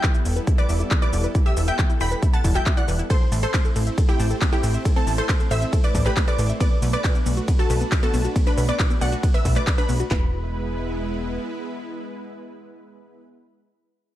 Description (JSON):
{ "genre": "uplifting trance", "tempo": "137 BPM", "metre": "4/4", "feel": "straight", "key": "E minor", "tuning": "A4 = 438 Hz", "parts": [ { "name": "wide unison pluck", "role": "melody", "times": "0.0-13.2 s", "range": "C4 to B5", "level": "-28 LUFS", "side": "equal", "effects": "sidechain pumping, tape echo" }, { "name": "supersaw stab", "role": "second line", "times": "0.0-13.2 s", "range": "G5 to B6", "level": "-35 LUFS", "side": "right 2 dB", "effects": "lush chorus, sidechain pumping, tape echo" }, { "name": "supersaw pad", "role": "sustained chords", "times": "0.0-13.2 s", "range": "G3 to C5", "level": "-31 LUFS", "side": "right 1 dB", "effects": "sidechain pumping" }, { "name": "wide unison pluck", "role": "arpeggios", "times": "0.0-10.3 s", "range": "B2 to A5", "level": "-32 LUFS", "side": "left 4 dB", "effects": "cassette tape, sidechain pumping, tape echo" }, { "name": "big-room dance drum kit", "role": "drums", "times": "0.0-10.2 s", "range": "handclaps, kick drum, snare drum", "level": "-20 LUFS", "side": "equal", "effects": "none" }, { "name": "big-room dance drum kit", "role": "drums", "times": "0.0-10.1 s", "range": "handclaps, hi-hat, ride cymbal, shaker", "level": "-30 LUFS", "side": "equal", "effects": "none" }, { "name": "plucky analog bass", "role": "bass", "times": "0.3-11.4 s", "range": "E1 to B1", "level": "-23 LUFS", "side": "equal", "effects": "sidechain pumping" } ], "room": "little or no reverb", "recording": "dark, warm production", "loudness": "-19 LUFS", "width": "side -13 dB against mid", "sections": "0.0-10.1 A section; 10.1-13.6 B section", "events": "drop 0.0-10.1", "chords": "0.0 Em; 3.1 Am; 6.6 Bm7; 10.1 E" }